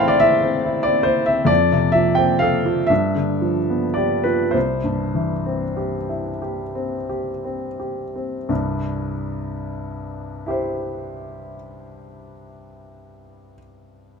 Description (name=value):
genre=classical, romantic nocturne for solo piano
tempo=28-50 BPM (dotted quarters)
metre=12/8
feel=rubato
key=C major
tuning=A4 = 440 Hz
part: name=clear grand piano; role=solo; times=0.0-14.2 s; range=C2 to C6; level=-19 LUFS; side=equal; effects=none
room=moderate large studio reverb, RT60 1.3 s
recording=close, detailed microphones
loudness=-18 LUFS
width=side -5 dB against mid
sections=0.0-8.5 A section; 8.5-14.2 B section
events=slowing down 0.0-8.5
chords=0.0 Am; 1.5 Fmaj13; 2.9 G7; 4.5 C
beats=0.22 | 1.49 2.89 4.54 6.41 | 8.48 10.45 12.39